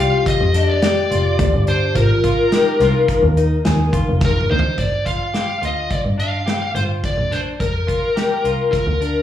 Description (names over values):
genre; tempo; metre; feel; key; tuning
progressive instrumental, band music in an uneven meter; 106 BPM; 5/4; straight; G phrygian; A4 = 440 Hz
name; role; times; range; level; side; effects
smooth overdriven lead guitar; melody; 0.0-9.2 s; Bb4 to F5; -20 LUFS; left 2 dB; slapback echo
vibraphone with medium mallets; second line; 0.0-4.5 s; Eb4 to G4; -23 LUFS; left 3 dB; slapback echo
clean electric guitar; arpeggios; 0.0-9.2 s; D4 to Ab4; -27 LUFS; left 1 dB; lush chorus, slapback echo
clear double bass; bass; 0.0-9.1 s; F1 to G2; -19 LUFS; equal; none
natural country drum kit; drums; 0.3-9.1 s; hi-hat, kick drum, snare drum, toms; -22 LUFS; equal; none
room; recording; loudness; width
light reverb, small room reverb; live gig heard through the venue's PA, club reverb, studio reverb; -15 LUFS; side -11 dB against mid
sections
0.0-4.8 A section; 4.8-9.2 B section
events
drum fill 4.2-4.8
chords
0.0 Fsus2; 2.0 Absus2; 4.8 Gm7